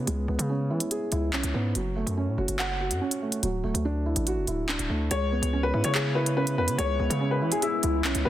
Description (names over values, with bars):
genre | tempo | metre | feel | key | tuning
hip hop, drill | 143 BPM | 4/4 | half-time | C# phrygian | A4 = 440 Hz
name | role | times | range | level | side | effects
felt-muted upright piano | accompaniment | 0.0-8.3 s | F#3 to F#5 | -29 LUFS | right 2 dB | none
distorted 808-style bass | bass | 0.0-8.3 s | D1 to E3 | -28 LUFS | equal | distortion
drill drum kit | drums | 0.1-8.2 s | handclaps, hi-hat | -30 LUFS | equal | none
clear upright piano | melody | 5.1-8.3 s | E4 to C#5 | -28 LUFS | left 3 dB | tape echo
deep dark ambient pad | sustained chords | 6.1-8.3 s | C#3 to E4 | -36 LUFS | left 3 dB | chorus, built-in reverb
room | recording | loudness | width
light reverb, small room ambience | dense, heavily limited modern master | -24 LUFS | side -12 dB against mid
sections
0.0-5.1 A section; 5.1-8.3 B section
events
none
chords
0.0 C#m7; 1.8 F#m; 3.4 Dadd9; 5.1 C#m7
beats
| 0.07 0.49 0.91 1.33 | 1.75 2.17 2.59 3.01 | 3.43 3.85 4.27 4.69 | 5.11 5.53 5.95 6.37 | 6.79 7.21 7.63 8.04